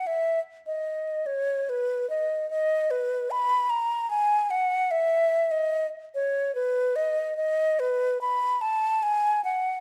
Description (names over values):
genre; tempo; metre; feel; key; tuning
classical, baroque-style fantasia for unaccompanied flute; 74 BPM; 3/4; rubato; B major; A4 = 440 Hz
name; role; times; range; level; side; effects
mellow hollow concert flute; solo; 0.0-9.8 s; B4 to B5; -26 LUFS; equal; none
room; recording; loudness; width
moderate recital hall reverb, RT60 1.5 s; close, detailed microphones, vinyl crackle; -26 LUFS; mono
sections
0.0-9.8 A section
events
none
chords
none